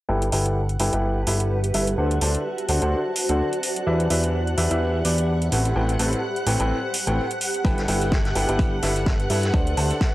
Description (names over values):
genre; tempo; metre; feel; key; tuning
piano house; 127 BPM; 4/4; swing 56% on 16ths; G major; A4 = 441 Hz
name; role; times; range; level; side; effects
string machine, violins; sustained chords; 0.1-10.1 s; F#5 to F#6; -33 LUFS; equal; ensemble chorus, sidechain pumping
clear upright piano; riff; 0.1-9.9 s; A2 to A5; -26 LUFS; equal; sidechain pumping, low-pass filter
fat analog bass; bass; 0.1-9.9 s; G1 to G2; -23 LUFS; equal; sidechain pumping
granular cloud pad; texture; 1.0-10.1 s; F#4 to B5; -29 LUFS; equal; built-in reverb, sidechain pumping
electronic hi-hat; drums; 0.2-10.0 s; none; -27 LUFS; right 1 dB; none
electronic kick drum; drums; 7.6-10.1 s; none; -21 LUFS; equal; none
vintage drum kit; drums; 7.6-10.1 s; hi-hat, snare drum; -34 LUFS; equal; high-pass filter on hats, high-pass filter on snare, high-pass filter on room
room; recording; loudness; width
light reverb, small room reverb; dry, gritty hardware recording, cassette tape; -20 LUFS; side -16 dB against mid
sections
0.1-10.1 A section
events
filter sweep on analog synth bass 0.1-10.1; filter sweep on upright piano 0.1-10.1; filter sweep on string machine 0.1-10.1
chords
0.1 G69; 2.0 D7; 3.9 Em7; 5.5 Am9; 7.6 G69; 9.5 D7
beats
| 0.09 0.56 1.03 1.50 | 1.98 2.45 2.92 3.40 | 3.87 4.34 4.81 5.29 | 5.76 6.23 6.70 7.17 | 7.65 8.12 8.59 9.06 | 9.54 10.01